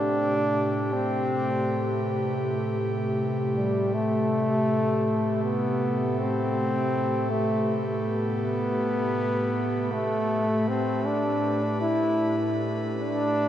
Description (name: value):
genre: ambient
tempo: free time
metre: none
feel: none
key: A minor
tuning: A4 = 438 Hz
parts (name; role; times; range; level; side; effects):
- warm trombone; melody; 0.0-13.5 s; G3 to E4; -26 LUFS; equal; dub echo
- airy breathy pad; sustained chords; 0.0-13.5 s; A2 to B4; -26 LUFS; equal; chorus
room: wet spring reverb, RT60 1.3 s, studio reverb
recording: none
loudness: -23 LUFS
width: side -11 dB against mid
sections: 0.0-13.5 A section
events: none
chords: 0.0 Am9; 10.3 G/A